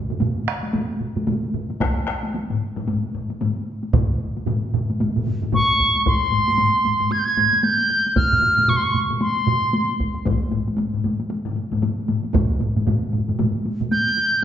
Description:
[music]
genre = japanese traditional, taiko drum ensemble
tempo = 114 BPM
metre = 4/4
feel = swing 60% on 16ths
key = C miyako bushi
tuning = A4 = 440 Hz
[part]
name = taiko ensemble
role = percussion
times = 0.1-14.3 s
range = none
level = -26 LUFS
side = left 1 dB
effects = none
[part]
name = taiko ensemble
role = percussion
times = 0.1-13.9 s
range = none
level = -25 LUFS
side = right 3 dB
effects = none
[part]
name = taiko ensemble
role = percussion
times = 1.8-13.9 s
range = none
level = -26 LUFS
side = left 4 dB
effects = none
[part]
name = taiko ensemble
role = percussion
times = 1.8-12.5 s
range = none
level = -24 LUFS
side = right 1 dB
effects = none
[part]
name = bright piccolo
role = melody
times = 5.5-10.0, 13.9-14.4 s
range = C6 to Ab6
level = -18 LUFS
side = right 1 dB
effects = none
[sound]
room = wet recital hall reverb, RT60 1.6 s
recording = recorded in a church or concert hall, nothing above 7.8 kHz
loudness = -19 LUFS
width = side -10 dB against mid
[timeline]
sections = 0.0-6.1 A section; 6.1-14.4 B section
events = speeding up 0.0-14.4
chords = none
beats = 0.20 0.74 1.27 | 1.81 2.34 2.88 3.41 | 3.94 4.47 5.00 5.53 | 6.06 6.58 7.11 7.64 | 8.17 8.69 9.22 9.74 | 10.26 10.79 11.31 11.83 | 12.35 12.87 13.39 13.91 | 14.43

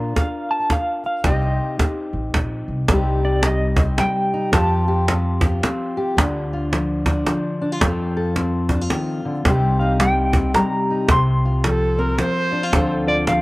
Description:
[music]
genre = acoustic folk duo or small band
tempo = 110 BPM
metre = 3/4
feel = swing 61% on 8ths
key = C dorian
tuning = A4 = 440 Hz
[part]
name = fingerpicked steel-string acoustic guitar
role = accompaniment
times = 0.0-13.4 s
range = Bb2 to Bb4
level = -22 LUFS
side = left 1 dB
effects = cassette tape
[part]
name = mellow electric guitar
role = melody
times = 0.2-5.9, 9.8-13.4 s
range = D5 to C6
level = -22 LUFS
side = equal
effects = tremolo, cassette tape
[part]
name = cajon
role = percussion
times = 0.2-13.4 s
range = none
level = -20 LUFS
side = right 1 dB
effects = none
[part]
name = upright bass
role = bass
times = 1.2-13.4 s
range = A1 to F2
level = -22 LUFS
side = equal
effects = none
[part]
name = warm viola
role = second line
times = 11.6-12.9 s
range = A4 to C5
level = -23 LUFS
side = right 1 dB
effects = cassette tape
[sound]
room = moderate spring reverb, RT60 1.9 s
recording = home recording on cassette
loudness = -17 LUFS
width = side -20 dB against mid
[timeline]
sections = 0.0-2.9 A section; 2.9-13.4 B section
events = none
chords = 0.0 Bb; 1.2 Cm; 4.5 Fadd9; 6.2 Dm; 7.8 F; 9.5 Cm; 11.1 Fsus2/C; 12.7 Dm7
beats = 0.16 0.70 | 1.25 1.80 2.34 | 2.89 3.44 3.98 | 4.53 5.08 5.62 | 6.17 6.72 7.27 | 7.81 8.36 8.91 | 9.46 10.01 10.55 | 11.10 11.65 12.20 | 12.75 13.29

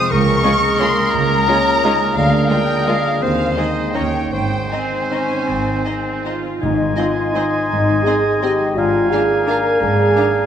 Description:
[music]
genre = classical, orchestral ballroom waltz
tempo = 146-188 BPM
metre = 3/4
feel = rubato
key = Ab major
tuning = A4 = 438 Hz
[part]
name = warm symphonic violin section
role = melody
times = 0.0-10.2 s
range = Eb5 to Eb6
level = -23 LUFS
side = left 3 dB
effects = none
[part]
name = bright oboe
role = second line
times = 0.0-10.5 s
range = Bb4 to Ab5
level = -24 LUFS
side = right 1 dB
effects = none
[part]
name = mellow small flute group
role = second line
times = 0.0-10.5 s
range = Eb5 to Eb6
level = -26 LUFS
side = right 2 dB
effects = none
[part]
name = warm clarinet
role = second line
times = 0.0-10.5 s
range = Eb4 to F5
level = -25 LUFS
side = left 1 dB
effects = none
[part]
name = mellow French horn section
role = sustained chords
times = 0.0-10.5 s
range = Ab3 to Bb4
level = -21 LUFS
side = left 1 dB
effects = none
[part]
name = concert harp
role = arpeggios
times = 0.0-10.5 s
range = F2 to Db5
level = -26 LUFS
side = left 5 dB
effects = none
[part]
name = dark bassoon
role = accompaniment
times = 0.1-10.5 s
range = Ab3 to Eb4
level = -24 LUFS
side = right 2 dB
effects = none
[part]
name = rich symphonic cello section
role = bass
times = 0.1-10.1 s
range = Db2 to Ab2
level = -25 LUFS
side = right 3 dB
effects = none
[part]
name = warm symphonic double bass section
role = bass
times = 0.1-10.1 s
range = Ab1 to Eb2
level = -26 LUFS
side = right 4 dB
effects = none
[part]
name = warm symphonic violin section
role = second line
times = 0.4-10.2 s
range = Eb4 to F5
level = -31 LUFS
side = left 3 dB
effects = none
[part]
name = clear chamber viola section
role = accompaniment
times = 0.4-10.2 s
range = Ab3 to F4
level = -27 LUFS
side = right 2 dB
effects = none
[part]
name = timpani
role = percussion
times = 6.6-7.1 s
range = Ab2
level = -28 LUFS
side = right 2 dB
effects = none
[sound]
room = wet concert hall reverb, RT60 2.4 s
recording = none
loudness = -14 LUFS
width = side -9 dB against mid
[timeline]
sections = 0.0-6.6 A section; 6.6-10.5 A section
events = none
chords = 0.1 Bbm7/Db; 2.2 Bb7/D; 3.2 Ab/Eb; 3.9 Eb7; 4.3 Ab; 8.8 Bb7/Ab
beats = | 0.12 0.45 0.81 | 1.14 1.48 1.83 | 2.17 2.51 2.88 | 3.22 3.57 3.95 | 4.32 4.71 5.11 | 5.49 5.87 6.25 | 6.62 6.98 7.35 | 7.70 8.05 8.42 | 8.77 9.12 9.47 | 9.81 10.16

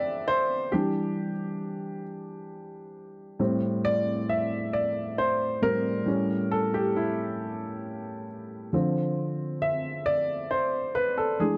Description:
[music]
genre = R&B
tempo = 45 BPM (dotted quarters)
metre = 6/8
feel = straight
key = A minor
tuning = A4 = 440 Hz
[part]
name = warm baby grand piano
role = solo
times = 0.0-11.6 s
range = A2 to G5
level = -28 LUFS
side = equal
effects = none
[sound]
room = light reverb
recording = dry, close 1970s-style studio recording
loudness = -28 LUFS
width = mono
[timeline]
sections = 0.0-3.4 A section; 3.4-11.6 B section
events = grand piano solo 0.0-3.4, 3.4-11.6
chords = 0.0 Dm7; 0.7 Em7; 3.4 Am7; 6.1 A7; 8.7 Dm7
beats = | 0.73 2.06 | 3.39 4.73 | 6.06 7.39 | 8.73 10.06 | 11.39

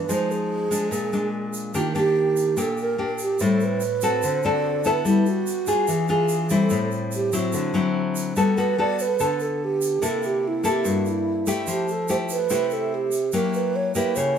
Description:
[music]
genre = bossa nova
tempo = 145 BPM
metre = 4/4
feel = straight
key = unclear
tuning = A4 = 441 Hz
[part]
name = breathy mellow wooden-headed alto flute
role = melody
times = 0.0-14.4 s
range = E4 to D5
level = -24 LUFS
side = right 4 dB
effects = none
[part]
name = nylon-string guitar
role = accompaniment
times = 0.0-14.4 s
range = G2 to A4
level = -23 LUFS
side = left 2 dB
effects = none
[part]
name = tube shaker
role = percussion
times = 0.1-14.4 s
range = none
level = -35 LUFS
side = right 4 dB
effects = none
[sound]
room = moderate large studio reverb, RT60 1.2 s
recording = band playing live in one room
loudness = -20 LUFS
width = side -8 dB against mid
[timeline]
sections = 0.0-8.4 A section; 8.4-14.4 B section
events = none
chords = 0.1 Fm7; 0.9 Bb7; 1.7 Ebmaj7; 3.4 Am7; 4.2 D7; 5.1 G69; 5.9 E7b9; 6.7 Am7; 7.5 D9; 8.4 Gmaj9; 10.0 C6; 11.7 Fmaj9; 13.3 F#7b9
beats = | 0.09 0.50 0.92 1.33 | 1.74 2.16 2.57 2.98 | 3.40 3.81 4.22 4.64 | 5.05 5.46 5.88 6.29 | 6.71 7.12 7.53 7.95 | 8.36 8.78 9.19 9.61 | 10.02 10.43 10.85 11.26 | 11.68 12.09 12.50 12.92 | 13.33 13.74 14.16

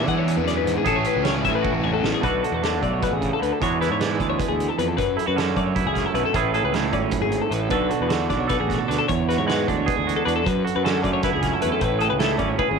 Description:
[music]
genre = math rock and midwest emo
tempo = 307 BPM (eighths)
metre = 7/8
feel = straight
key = A major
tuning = A4 = 439 Hz
[part]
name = twangy electric guitar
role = accompaniment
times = 0.0-12.8 s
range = E2 to A4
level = -24 LUFS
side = right 12 dB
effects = none
[part]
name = twelve-string electric guitar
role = arpeggios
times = 0.0-12.8 s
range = G#4 to F#5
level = -25 LUFS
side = left 14 dB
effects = vibrato effect
[part]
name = biting overdriven guitar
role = riff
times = 0.0-2.2 s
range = A2 to A4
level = -28 LUFS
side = left 15 dB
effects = none
[part]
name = fuzz picked electric bass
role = bass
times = 0.0-12.8 s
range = G#1 to E3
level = -26 LUFS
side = left 1 dB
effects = overdrive
[part]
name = loose indie drum kit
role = drums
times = 0.1-12.7 s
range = hi-hat, kick drum, snare drum, toms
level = -29 LUFS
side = right 2 dB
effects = none
[sound]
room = light reverb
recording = 1960s-style stereo with parts hard left and right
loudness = -20 LUFS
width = side -5 dB against mid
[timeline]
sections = 0.0-2.2 A section; 2.2-12.8 B section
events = drum fill 1.6-2.2, 12.6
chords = 0.0 E7; 0.9 Amaj7; 3.6 E9; 5.0 Dmaj9/F#; 6.3 Amaj9; 7.7 Bm7; 9.1 E9; 10.5 Dmaj9/F#; 11.8 Amaj9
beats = 0.09 0.28 0.48 0.67 | 0.87 1.06 1.26 1.45 1.65 1.84 2.04 | 2.24 2.43 2.63 2.82 3.02 3.21 3.41 | 3.61 3.80 4.00 4.19 4.39 4.59 4.78 | 4.98 5.17 5.37 5.57 5.76 5.96 6.15 | 6.35 6.54 6.74 6.93 7.13 7.33 7.52 | 7.72 7.91 8.11 8.30 8.50 8.69 8.89 | 9.08 9.28 9.47 9.67 9.87 10.06 10.26 | 10.45 10.65 10.84 11.04 11.23 11.43 11.62 | 11.82 12.01 12.21 12.40 12.59 12.79

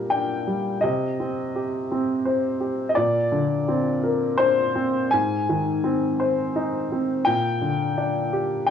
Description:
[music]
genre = neoclassical minimalist piano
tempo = 84 BPM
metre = 3/4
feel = rubato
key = C minor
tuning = A4 = 440 Hz
[part]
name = warm upright piano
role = solo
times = 0.0-8.7 s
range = Ab2 to Ab5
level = -21 LUFS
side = left 1 dB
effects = none
[sound]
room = light reverb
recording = home recording on cassette, small room ambience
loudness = -21 LUFS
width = side -8 dB against mid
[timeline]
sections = 0.0-8.7 A section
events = none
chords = 0.0 Gm/Bb; 0.8 Cm; 3.0 Bbadd9; 5.1 Ab; 7.3 Gm/Bb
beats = 0.12 | 0.83 1.55 2.26 | 2.97 3.68 4.40 | 5.14 5.86 6.57 | 7.27 7.98 8.69

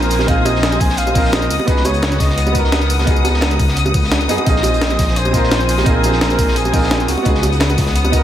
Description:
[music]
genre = liquid drum and bass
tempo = 172 BPM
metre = 4/4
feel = straight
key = unclear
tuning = A4 = 441 Hz
[part]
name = mellow flugelhorn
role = melody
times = 0.0-7.4 s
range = Gb4 to Ab5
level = -22 LUFS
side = left 1 dB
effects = ping-pong delay
[part]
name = bright baby grand piano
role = accompaniment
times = 0.0-8.2 s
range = Cb4 to Bb4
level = -21 LUFS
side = right 2 dB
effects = ping-pong delay
[part]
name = rich symphonic string section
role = sustained chords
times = 0.0-8.2 s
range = Cb4 to Eb6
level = -22 LUFS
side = left 2 dB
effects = none
[part]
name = dark detuned saw bass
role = bass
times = 0.0-8.2 s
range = Bb1 to Gb2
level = -18 LUFS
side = equal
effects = none
[part]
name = breakbeat sampler-style drum kit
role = drums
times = 0.0-8.2 s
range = hi-hat, snare drum, tambourine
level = -21 LUFS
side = equal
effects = none
[part]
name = crunchy breakbeat drum kit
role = drums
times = 0.1-8.2 s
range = hi-hat, snare drum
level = -28 LUFS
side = equal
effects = high-pass filter on hats, high-pass filter on snare, high-pass filter on room
[part]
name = bongos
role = percussion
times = 0.2-8.1 s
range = none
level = -26 LUFS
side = right 3 dB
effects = none
[part]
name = electronic kick drum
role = drums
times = 0.3-8.2 s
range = none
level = -18 LUFS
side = equal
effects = none
[sound]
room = moderate plate reverb, RT60 1.1 s, small room ambience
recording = dreamy mix soaked in reverb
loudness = -13 LUFS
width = side -11 dB against mid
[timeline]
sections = 0.0-8.2 A section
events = none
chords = 0.0 Bb9sus4; 1.5 Db9sus4; 4.5 Bb9sus4; 7.1 Db9sus4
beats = | 0.28 0.63 0.98 1.33 | 1.68 2.03 2.38 2.72 | 3.07 3.42 3.77 4.12 | 4.47 4.82 5.17 5.51 | 5.86 6.21 6.56 6.91 | 7.26 7.61 7.96

